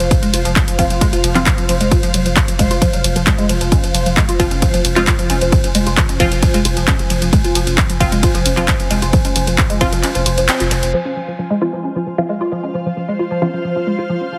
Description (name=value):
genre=driving peak-time techno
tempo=133 BPM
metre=4/4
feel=straight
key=F minor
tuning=A4 = 439 Hz
part: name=woody wave-folded pluck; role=riff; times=0.0-14.4 s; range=F3 to F4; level=-23 LUFS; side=equal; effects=overdrive, ensemble chorus, sidechain pumping, digital delay
part: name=saturated sub bass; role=bass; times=0.0-10.9 s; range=F1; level=-23 LUFS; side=equal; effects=tube saturation, sidechain pumping, low-pass filter
part: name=techno drum kit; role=drums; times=0.0-10.9 s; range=handclaps, hi-hat, ride cymbal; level=-22 LUFS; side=equal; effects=low-pass filter on snare, sidechain pumping on hats, low-pass filter on hats, sidechain pumping on cymbals, low-pass filter on cymbals, low-pass filter on room
part: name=ethereal airy pad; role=texture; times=0.0-14.4 s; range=F4 to Ab5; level=-26 LUFS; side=equal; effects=ensemble chorus, built-in reverb, phaser, sidechain pumping
part: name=electronic kick drum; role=drums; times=0.1-9.9 s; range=none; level=-18 LUFS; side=equal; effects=none
part: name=filtered dub chord stab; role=stabs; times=0.8-1.4, 4.4-13.5 s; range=F3 to F4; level=-23 LUFS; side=equal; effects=phaser, sidechain pumping, digital delay
room=moderate lush hall reverb, RT60 1.6 s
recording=heavily compressed radio sound, multiband compression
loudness=-15 LUFS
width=mono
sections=0.0-10.9 A section; 10.9-14.4 B section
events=drop 0.0-10.9; kick drops out 10.0-10.9; band accent 10.5; filter sweep on synth arpeggio sound 10.9-14.4; filter sweep on synth stab 10.9-14.4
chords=0.0 F5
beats=| 0.11 0.56 1.01 1.46 | 1.91 2.37 2.82 3.27 | 3.72 4.17 4.62 5.07 | 5.52 5.97 6.43 6.88 | 7.33 7.78 8.23 8.68 | 9.13 9.58 10.04 10.49 | 10.94 11.39 11.84 12.29 | 12.74 13.19 13.64 14.10